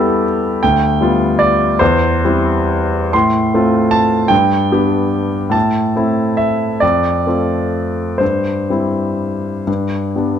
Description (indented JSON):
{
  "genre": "classical, romantic nocturne for solo piano",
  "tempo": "40-54 BPM (dotted quarters)",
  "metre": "6/8",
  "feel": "rubato",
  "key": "C major",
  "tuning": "A4 = 440 Hz",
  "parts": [
    { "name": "warm concert grand piano", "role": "solo", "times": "0.0-10.4 s", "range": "D2 to C6", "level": "-13 LUFS", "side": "equal", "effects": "none" }
  ],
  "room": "light reverb",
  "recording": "close, detailed microphones",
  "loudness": "-13 LUFS",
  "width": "side -8 dB against mid",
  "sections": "0.0-10.4 A section",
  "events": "none",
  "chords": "0.0 Em; 0.6 G7/D; 1.8 C/E; 3.1 F/A; 4.3 G; 5.5 Am; 6.8 Dm7/F; 8.2 C/G; 9.7 G"
}